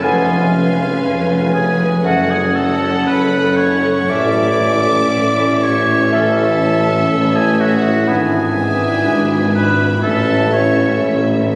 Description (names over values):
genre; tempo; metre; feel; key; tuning
classical, slow romantic movement for symphony orchestra; 60 BPM; 4/4; rubato; unclear; A4 = 439 Hz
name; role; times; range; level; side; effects
rich symphonic violin section; melody; 0.0-11.6 s; E5 to G#5; -30 LUFS; equal; none
clear oboe; second line; 0.0-11.0 s; E#4 to D5; -22 LUFS; equal; none
mellow clarinet; second line; 0.0-10.4 s; C#4 to D4; -35 LUFS; equal; none
silver concert flute; second line; 0.0-10.5 s; E5 to G#5; -28 LUFS; equal; none
warm symphonic violin section; second line; 0.0-11.0 s; E#5 to D6; -30 LUFS; equal; none
warm bassoon; accompaniment; 0.0-10.4 s; A3 to B3; -28 LUFS; equal; none
warm symphonic viola section; accompaniment; 0.0-11.6 s; C#4 to B4; -26 LUFS; equal; none
dark French horn section; sustained chords; 0.0-11.6 s; C#4 to B4; -22 LUFS; equal; none
concert harp; arpeggios; 0.0-11.6 s; E#2 to D5; -28 LUFS; equal; none
dark symphonic cello section; bass; 0.0-11.6 s; E#2 to A2; -25 LUFS; equal; none
rich studio double bass section; bass; 0.0-11.6 s; E#1 to A1; -24 LUFS; equal; none
warm tuba; bass; 0.0-11.6 s; E#1 to A1; -23 LUFS; equal; none
room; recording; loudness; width
wet church reverb, RT60 2.7 s; recorded on a phone in the room, studio reverb, compression; -15 LUFS; mono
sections
0.0-11.6 A section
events
none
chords
0.0 C#7/E#; 2.0 F#m; 4.1 A; 8.1 E7/G#; 10.0 A